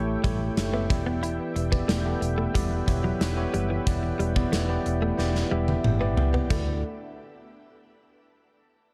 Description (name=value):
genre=1980s-style pop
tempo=91 BPM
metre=4/4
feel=straight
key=unclear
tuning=A4 = 441 Hz
part: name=bell-like tine electric piano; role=accompaniment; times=0.0-6.8 s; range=D2 to E5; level=-32 LUFS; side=equal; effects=shimmer reverb
part: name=sweeping resonant pad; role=sustained chords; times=0.0-6.8 s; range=D4 to C#6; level=-41 LUFS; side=equal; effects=chorus, shimmer reverb
part: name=vintage muted fingered electric bass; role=bass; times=0.0-6.8 s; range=E1 to D2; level=-31 LUFS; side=equal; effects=none
part: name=direct-recorded clean electric guitar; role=riff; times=0.2-6.7 s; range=E3 to E4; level=-36 LUFS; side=equal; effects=analog chorus, tape echo, shimmer reverb
part: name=gated 80s drum kit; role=drums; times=0.2-6.7 s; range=crash cymbal, hi-hat, kick drum, snare drum, tambourine, toms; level=-30 LUFS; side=equal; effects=none
room=light reverb, studio ambience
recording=dark, warm production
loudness=-26 LUFS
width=mono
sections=0.0-6.5 A section; 6.5-8.9 B section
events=drum fill 5.2-6.5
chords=0.0 A7; 0.9 Em7; 6.5 Dadd9